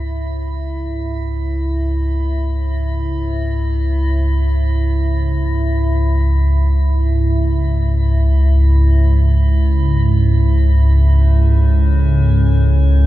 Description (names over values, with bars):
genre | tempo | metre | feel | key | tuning
dark ambient drone | free time | none | none | C# minor | A4 = 440 Hz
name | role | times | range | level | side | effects
deep rumbling drone | drone | 0.0-13.1 s | C#2 to G#2 | -13 LUFS | equal | built-in reverb, phaser
metallic inharmonic drone | texture | 0.0-13.1 s | C#4 to E4 | -25 LUFS | right 1 dB | chorus, built-in reverb
room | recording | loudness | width
moderate cathedral reverb, RT60 5.8 s | none | -13 LUFS | side -15 dB against mid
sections
0.0-13.1 A section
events
fade-in on synth drone 0.0-13.1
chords
0.0 C#m